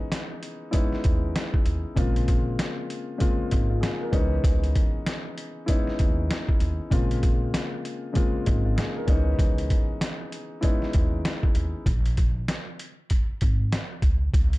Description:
hip hop, boom-bap hip-hop; 97 BPM; 4/4; swing 62% on 16ths; A4 = 443 Hz
dark grand piano; accompaniment; 0.0-11.9 s; Db3 to Bb4; -29 LUFS; left 2 dB; cassette tape, high-pass filter, low-pass filter
trip hop sampler-style drum kit; drums; 0.1-14.6 s; hi-hat, kick drum, snare drum; -24 LUFS; equal
upright bass; bass; 1.1-14.6 s; Ab1 to Eb2; -26 LUFS; equal
little or no reverb; dark, warm production; -22 LUFS; side -20 dB against mid
0.0-14.6 A section
0.0 Dbm9; 2.0 Bbm9; 4.1 Dbm9; 6.9 Bbm9; 9.1 Dbm9; 11.9 Absus2; 14.0 N.C.

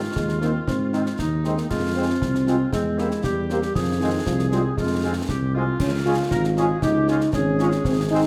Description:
military-style march for wind band; 117 BPM; 2/4; straight; A4 = 441 Hz
warm woodwind section; second line; 0.0-8.3 s; C4 to Bb4; -32 LUFS; equal
mellow tuba; bass; 0.0-8.3 s; Ab1 to Ab2; -27 LUFS; equal
mellow euphonium; second line; 0.2-8.3 s; Eb3 to F4; -27 LUFS; equal
concert snare drum, concert bass drum and clash cymbals; drums; 0.2-8.3 s; -32 LUFS; equal
clear trumpet section; melody; 0.4-8.2 s; Ab4 to C5; -47 LUFS; equal
mellow French horn section; accompaniment; 0.4-8.2 s; Ab3 to Ab4; -33 LUFS; equal
bright trombone section; sustained chords; 0.4-8.2 s; Eb3 to Db4; -34 LUFS; equal
wet large studio reverb, RT60 1.3 s; -22 LUFS; mono
0.0-8.3 A section
0.0 Ab; 1.7 Fm; 2.7 C7/E; 3.8 Fm; 5.8 Db

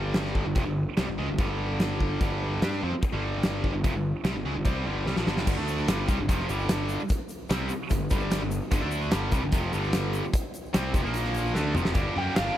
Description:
classic rock; 148 BPM; 4/4; straight; G minor from 5.5 s; A4 = 441 Hz
tight distorted guitar; riff; 0.0-12.6 s; F2 to G4; -30 LUFS; equal; distortion
fuzz picked electric bass; bass; 0.0-12.5 s; F1 to G2; -30 LUFS; equal; overdrive
huge arena drum kit; drums; 0.1-12.5 s; crash cymbal, hi-hat, kick drum, snare drum, toms; -28 LUFS; equal
egg shaker; percussion; 5.5-11.9 s; -49 LUFS; left 7 dB
smooth overdriven lead guitar; melody; 12.2-12.6 s; F5 to G5; -29 LUFS; equal; wah
studio ambience; -25 LUFS; side -12 dB against mid
0.0-5.5 A section; 5.5-12.0 B section
drum fill 5.1-5.5, 11.6-12.0
0.0 G5; 11.1 Bb5; 11.6 F6; 12.0 Gm

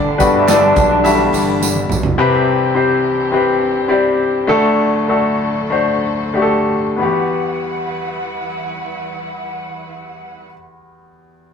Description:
piano-driven pop; 90-106 BPM; 4/4; straight; E minor; A4 = 438 Hz
mellow French horn section; second line; 0.0-1.9 s; D3 to D4; -15 LUFS; equal
clear baby grand piano; accompaniment; 0.0-11.5 s; C2 to E5; -15 LUFS; left 2 dB
rich studio string section; sustained chords; 0.0-10.4 s; C2 to F#5; -27 LUFS; equal
fat analog bass; bass; 0.0-2.2 s; G1 to B1; -22 LUFS; right 1 dB
modern studio drum kit; drums; 0.2-2.2 s; handclaps, hi-hat, kick drum, snare drum, toms; -21 LUFS; right 2 dB
tambourine; percussion; 0.2-2.0 s; -26 LUFS; right 6 dB
wet studio reverb, RT60 0.6 s; rough rehearsal-room recording; -13 LUFS; side -6 dB against mid
0.0-2.2 A section; 2.2-7.0 B section; 7.0-9.7 C section
grand piano solo 0.0-2.2; drum fill 1.6-2.2; slowing down 2.2-7.0
0.0 Em7/G; 2.2 Cmaj7; 4.5 D; 7.0 Emadd9

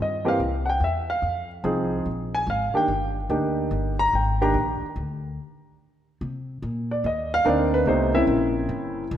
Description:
jazz piano trio; 144 BPM; 4/4; swing 66% on 8ths; Eb major; A4 = 442 Hz
clear concert grand piano; melody; 0.0-9.0 s; C3 to Bb5; -22 LUFS; equal
upright bass; bass; 0.0-9.2 s; E1 to C3; -28 LUFS; left 1 dB
wet concert hall reverb, RT60 1.8 s; -21 LUFS; side -10 dB against mid
0.0-6.2 A section; 6.2-9.2 B section
stop 5.4-6.2
0.4 C; 1.2 Fm7; 2.1 Bb7(no3); 2.9 Ebmaj7; 6.2 Cm9; 7.9 C7b9

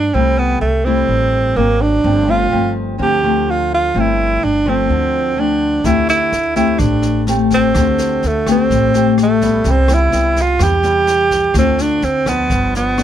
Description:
bossa nova; 126 BPM; 4/4; straight; A4 = 445 Hz
warm tenor saxophone; melody; 0.0-13.0 s; A3 to G4; -15 LUFS; right 3 dB
nylon-string guitar; accompaniment; 0.0-13.0 s; G2 to G4; -18 LUFS; left 5 dB
upright bass; bass; 0.0-13.0 s; G1 to E2; -19 LUFS; equal
jazz brush drum kit; drums; 5.8-13.0 s; kick drum, rim click, snare drum; -23 LUFS; equal
light reverb; close, detailed microphones; -12 LUFS; side -10 dB against mid
0.0-13.0 A section
0.0 C6; 1.6 G#9; 2.0 G9sus4; 5.8 D7sus4; 9.7 Cmaj7; 11.6 Dm7; 12.5 G7

